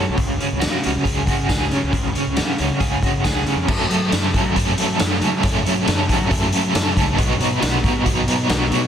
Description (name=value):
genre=indie rock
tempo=137 BPM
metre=4/4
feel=straight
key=F# dorian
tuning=A4 = 441 Hz
part: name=crunchy overdriven guitar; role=riff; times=0.0-8.9 s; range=F#2 to A4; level=-20 LUFS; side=right 1 dB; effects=tremolo
part: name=growling fingered electric bass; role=bass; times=0.0-8.9 s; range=B1 to F#3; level=-24 LUFS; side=equal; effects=overdrive
part: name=raw garage drum kit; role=drums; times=0.2-8.8 s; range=crash cymbal, hi-hat, kick drum, snare drum, tambourine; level=-21 LUFS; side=left 1 dB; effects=none
room=little or no reverb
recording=dense, heavily limited modern master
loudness=-16 LUFS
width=side -9 dB against mid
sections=0.0-3.7 A section; 3.7-8.9 B section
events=none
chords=0.2 C#sus4; 3.7 F#m; 7.2 B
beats=| 0.17 0.61 1.05 1.49 | 1.93 2.37 2.81 3.25 | 3.69 4.12 4.56 5.00 | 5.43 5.87 6.31 6.74 | 7.18 7.62 8.05 8.49